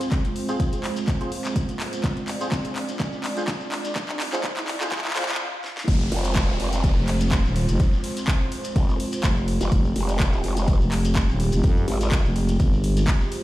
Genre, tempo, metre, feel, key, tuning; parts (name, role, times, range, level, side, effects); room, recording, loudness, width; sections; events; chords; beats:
bass house; 125 BPM; 4/4; swing 54% on 16ths; F dorian; A4 = 443 Hz
dark analog pad; sustained chords; 0.0-13.4 s; Ab3 to D5; -30 LUFS; right 2 dB; chorus, sidechain pumping
house drum kit; drums; 0.0-13.4 s; handclaps, hi-hat, ride cymbal, snare drum; -30 LUFS; equal; overdrive, small room ambience
shekere; percussion; 0.0-13.3 s; -40 LUFS; left 3 dB
riser, swell and downlifter; sound effects; 0.3-9.7 s; -36 LUFS; left 1 dB
electronic kick drum; drums; 0.1-13.2 s; -22 LUFS; equal; overdrive, small room ambience
percussive organ stab; stabs; 0.5-5.2 s; C4 to C5; -33 LUFS; right 1 dB; ensemble chorus, sidechain pumping, digital delay
growling FM bass; bass; 5.9-13.1 s; Eb1 to F2; -22 LUFS; equal; sidechain pumping
growl bass; bass; 6.1-12.2 s; F1 to Ab1; -25 LUFS; equal; chorus, overdrive, sidechain pumping
little or no reverb; played on a big sound system in a bare room, stone room reverb, high-pass filter; -21 LUFS; side -16 dB against mid
0.0-5.9 A section; 5.9-13.4 B section
build-up 0.0-5.9; drum fill 0.0-5.4, 5.6; filter sweep on synth stab 0.0-5.9; filter sweep 0.0-5.9; riser 0.3-5.4; swell 4.9-5.9; stop 5.4-5.9; drop 5.9-13.4
0.0 Fm
| 0.12 0.60 1.08 1.56 | 2.04 2.52 3.00 3.48 | 3.96 4.44 4.92 5.40 | 5.88 6.36 6.84 7.32 | 7.80 8.28 8.76 9.24 | 9.72 10.20 10.68 11.16 | 11.64 12.12 12.60 13.08